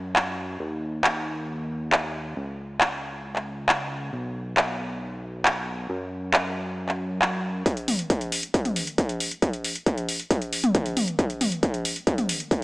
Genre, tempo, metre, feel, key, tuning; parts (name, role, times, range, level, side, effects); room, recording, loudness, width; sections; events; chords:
uplifting trance; 136 BPM; 4/4; straight; A4 = 440 Hz
fat analog bass; bass; 0.0-7.6 s; Cb2 to Gb2; -32 LUFS; equal; sidechain pumping
techno drum kit; drums; 0.2-12.6 s; handclaps, hi-hat, toms; -24 LUFS; equal
electronic kick drum; drums; 7.7-12.6 s; -25 LUFS; equal; distortion
moderate lush hall reverb, RT60 2.2 s; small speaker sound; -24 LUFS; side -22 dB against mid
0.0-7.7 A section; 7.7-12.6 B section
build-up 7.7-12.6